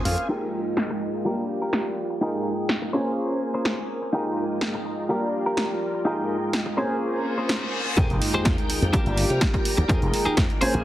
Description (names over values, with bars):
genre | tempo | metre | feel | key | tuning
filtered disco house | 125 BPM | 4/4 | straight | F minor | A4 = 439 Hz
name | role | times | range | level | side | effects
dark baby grand piano | accompaniment | 0.0-10.8 s | G3 to G5 | -27 LUFS | equal | phaser, sidechain pumping, low-pass filter
string machine, full ensemble | sustained chords | 0.0-10.8 s | Ab3 to Ab5 | -31 LUFS | right 1 dB | ensemble chorus, sidechain pumping, low-pass filter
clean electric guitar | riff | 0.0-10.8 s | Db4 to F5 | -28 LUFS | left 1 dB | harmonic tremolo, sidechain pumping, low-pass filter
slap bass with an envelope filter | bass | 0.0-0.1, 8.0-10.8 s | F1 to C3 | -25 LUFS | equal | sidechain pumping, low-pass filter
punchy analog drum machine | drums | 0.1-10.8 s | crash cymbal, hi-hat, snare drum | -27 LUFS | equal | overdrive, low-pass filter on snare, sidechain pumping on hats, low-pass filter on hats, sidechain pumping on cymbals, low-pass filter on cymbals, low-pass filter on room
reverse cymbal and sub drop | sound effects | 7.2-9.9 s | none | -32 LUFS | left 1 dB | none
electronic kick drum | drums | 8.0-10.5 s | none | -24 LUFS | equal | overdrive
room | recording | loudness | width
light reverb | heavily compressed radio sound | -22 LUFS | side -14 dB against mid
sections
0.3-8.0 A section; 8.0-10.8 B section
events
clean electric guitar fill 0.0; filter sweep on drum 0.3-8.0; filter sweep 0.3-8.0; reverse cymbal 7.2-8.0; drop 8.0-10.8; impact 8.0-9.9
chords
0.3 Fm11; 1.3 Gm7; 2.2 Fm11; 2.9 Bbm9; 4.1 Fm11; 5.1 Gm7; 6.1 Fm11; 6.8 Bbm9; 8.0 Fm11; 8.9 Gm7; 9.9 Fm11